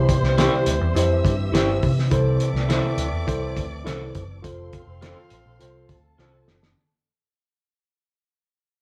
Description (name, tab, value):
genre	uptempo 1960s-style soul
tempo	103 BPM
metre	4/4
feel	straight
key	unclear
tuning	A4 = 441 Hz
part	dark studio violin section	second line	0.0-6.8 s	A4 to E6	-35 LUFS	equal	none
part	warm horn section	second line	0.0-6.4 s	G3 to F5	-36 LUFS	equal	none
part	mellow tine electric piano	accompaniment	0.0-6.6 s	C3 to C5	-27 LUFS	equal	overdrive
part	tonewheel organ	sustained chords	0.0-6.7 s	E3 to A4	-36 LUFS	equal	slow rotary speaker, overdrive, chorus vibrato
part	vintage muted picked electric bass	bass	0.0-6.7 s	F1 to C3	-27 LUFS	equal	none
part	cloth-damped thuddy drum kit	drums	0.1-6.8 s	hi-hat, kick drum, snare drum	-28 LUFS	equal	none
part	electric guitar through a small old amp	stabs	0.4-6.3 s	E4 to C5	-28 LUFS	equal	none
room	wet studio reverb, RT60 0.8 s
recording	band playing live in one room, vinyl crackle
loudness	-21 LUFS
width	mono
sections	0.0-6.8 A section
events	fade-out 0.0-6.8; drum fill 6.2-6.8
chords	0.0 C; 2.1 Am/C; 4.4 F